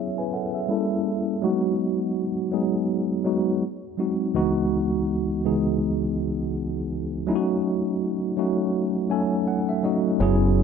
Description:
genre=contemporary R&B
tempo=82 BPM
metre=4/4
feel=swing 58% on 16ths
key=unclear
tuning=A4 = 442 Hz
part: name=mellow tine electric piano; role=accompaniment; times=0.0-10.6 s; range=C#2 to G#5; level=-22 LUFS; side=equal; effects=medium stereo tremolo, low-pass filter
part: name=deep dub fingered electric bass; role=bass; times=10.2-10.6 s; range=F#1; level=-20 LUFS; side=equal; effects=none
room=light reverb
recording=dark, warm production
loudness=-22 LUFS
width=side -6 dB against mid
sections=0.0-10.2 A section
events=filter sweep on tine electric piano 0.0-10.2; tine electric piano fill 8.7-10.2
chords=0.0 F#7sus4; 0.7 Gdim7; 1.4 G#m7; 3.6 G#7; 4.3 C#m11; 7.3 D#m7b5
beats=0.69 | 1.42 2.15 2.89 3.62 | 4.35 5.08 5.81 6.54 | 7.28 8.01 8.74 9.47 | 10.20

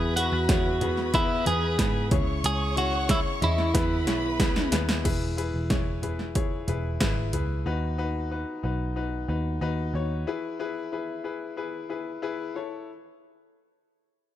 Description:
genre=piano-driven pop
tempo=92 BPM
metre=4/4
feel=straight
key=E major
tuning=A4 = 440 Hz
part: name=twelve-string electric guitar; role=melody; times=0.0-4.7 s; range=E4 to G#4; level=-28 LUFS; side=right 2 dB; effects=ping-pong delay
part: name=rich studio violin section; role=second line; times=0.0-5.0 s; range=B4 to C#6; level=-34 LUFS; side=equal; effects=none
part: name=bright upright piano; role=accompaniment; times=0.0-12.9 s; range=C#3 to D#5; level=-31 LUFS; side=left 6 dB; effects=none
part: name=vintage muted picked electric bass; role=bass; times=0.0-10.2 s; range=E1 to G#2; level=-29 LUFS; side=right 1 dB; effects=none
part: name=punchy analog drum machine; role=drums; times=0.2-7.5 s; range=crash cymbal, hi-hat, kick drum, snare drum, toms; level=-27 LUFS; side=right 1 dB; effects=overdrive
room=light reverb, digital ambience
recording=none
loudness=-24 LUFS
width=side -12 dB against mid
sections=0.0-5.0 A section; 5.0-14.4 B section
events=drum fill 3.7-5.0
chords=0.0 E; 2.1 C#m; 3.7 E; 7.7 B; 10.3 E; 12.5 A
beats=0.49 1.14 1.79 | 2.44 3.09 3.75 4.40 | 5.05 5.70 6.35 7.00 | 7.66 8.31 8.96 9.61 | 10.27 10.92 11.57 12.22 | 12.88

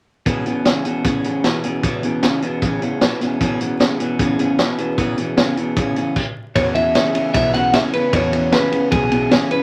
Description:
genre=rockabilly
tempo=152 BPM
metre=4/4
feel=straight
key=E major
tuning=A4 = 438 Hz
part: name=picked steel-string acoustic guitar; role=accompaniment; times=0.3-9.6 s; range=E3 to G#4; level=-27 LUFS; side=equal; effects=none
part: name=electric guitar through a small old amp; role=riff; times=0.3-9.6 s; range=E2 to C#3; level=-23 LUFS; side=equal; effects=none
part: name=vintage drum kit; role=drums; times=0.3-9.6 s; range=crash cymbal, hi-hat, kick drum, ride cymbal, snare drum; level=-22 LUFS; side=equal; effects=none
part: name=electric guitar through a small old amp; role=melody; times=6.6-9.6 s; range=G#4 to F#5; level=-21 LUFS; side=equal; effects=none
part: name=upright bass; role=bass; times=6.6-9.5 s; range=B1 to E2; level=-28 LUFS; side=equal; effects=none
room=light reverb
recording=vinyl crackle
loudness=-18 LUFS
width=mono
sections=0.3-6.6 A section; 6.6-9.6 B section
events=stop 6.2-6.6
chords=0.3 E6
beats=| 0.26 0.65 1.05 1.44 | 1.83 2.23 2.62 3.01 | 3.41 3.80 4.19 4.59 | 4.98 5.37 5.77 6.16 | 6.55 6.95 7.34 7.74 | 8.13 8.52 8.92 9.31

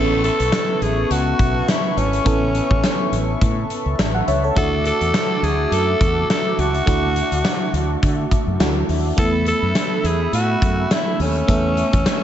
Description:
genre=1980s-style pop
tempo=104 BPM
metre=4/4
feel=swing 55% on 16ths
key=A major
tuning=A4 = 440 Hz
part: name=raspy alto saxophone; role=melody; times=0.0-12.2 s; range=C#4 to A4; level=-22 LUFS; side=equal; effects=tape echo
part: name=FM electric piano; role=accompaniment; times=0.0-12.2 s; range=A3 to F#5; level=-25 LUFS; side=equal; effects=chorus, phaser
part: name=brassy analog pad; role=sustained chords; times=0.0-12.2 s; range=A3 to E6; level=-26 LUFS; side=equal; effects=chorus
part: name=mellow fretless electric bass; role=bass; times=0.0-12.0 s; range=G#1 to D3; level=-22 LUFS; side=equal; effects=none
part: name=big rock drum kit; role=drums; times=0.2-12.2 s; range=hi-hat, kick drum, snare drum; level=-21 LUFS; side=equal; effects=gated reverb
room=small room ambience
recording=nothing above 7.9 kHz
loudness=-16 LUFS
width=side -10 dB against mid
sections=0.0-12.2 A section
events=none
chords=0.0 Aadd9; 4.6 Dadd9; 9.2 F#m7 (rootless)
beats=0.53 1.10 1.68 | 2.26 2.83 3.41 3.99 | 4.57 5.14 5.72 6.30 | 6.87 7.45 8.03 8.60 | 9.18 9.76 10.34 10.91 | 11.49 12.07

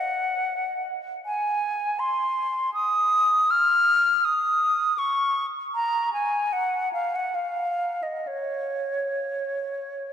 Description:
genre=classical, free, expressive piece for unaccompanied flute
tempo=62-85 BPM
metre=3/4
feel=rubato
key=Db major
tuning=A4 = 440 Hz
part: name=concert flute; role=solo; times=0.0-10.1 s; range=Db5 to F6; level=-22 LUFS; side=equal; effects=none
room=wet cathedral reverb, RT60 4.4 s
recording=none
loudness=-22 LUFS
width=side -8 dB against mid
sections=0.0-10.1 A section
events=none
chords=none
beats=0.51 | 1.25 1.99 2.74 | 3.50 4.25 4.99 | 5.75 6.53 7.35 | 8.26 9.21 10.12

